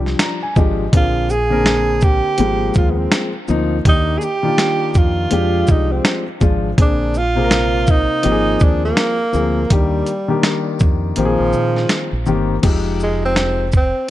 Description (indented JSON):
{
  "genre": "hip hop, jazz-hop",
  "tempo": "82 BPM",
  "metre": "4/4",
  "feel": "swing 60% on 16ths",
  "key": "F dorian",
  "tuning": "A4 = 440 Hz",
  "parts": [
    { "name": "breathy tenor saxophone", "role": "melody", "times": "0.0-14.1 s", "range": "F3 to Ab4", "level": "-19 LUFS", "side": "right 2 dB", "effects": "none" },
    { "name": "dark grand piano", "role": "accompaniment", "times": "0.0-13.6 s", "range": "C3 to Bb5", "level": "-20 LUFS", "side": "left 4 dB", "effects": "none" },
    { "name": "deep dub fingered electric bass", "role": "bass", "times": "0.0-13.9 s", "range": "F1 to Bb2", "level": "-21 LUFS", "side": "equal", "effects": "none" },
    { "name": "dusty soul sampler-style drum kit", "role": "drums", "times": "0.1-13.9 s", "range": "crash cymbal, hi-hat, kick drum, shaker, snare drum", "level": "-16 LUFS", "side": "equal", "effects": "vintage 12-bit sampler grit" }
  ],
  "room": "light reverb, digital ambience",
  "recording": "dark, warm production",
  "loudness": "-14 LUFS",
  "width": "side -14 dB against mid",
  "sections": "0.0-12.6 A section; 12.6-14.1 B section",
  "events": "grand piano fill 0.0-0.9; kick muted 11.2-12.6; tenor saxophone solo 12.6-14.1",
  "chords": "0.0 Fm69; 0.9 Bb9; 2.4 Ab69; 3.9 Ebmaj7; 5.3 Fm69; 6.8 Bb9; 8.2 Ab69; 9.7 Ebmaj7; 11.2 Bb9sus4; 12.6 Fm9"
}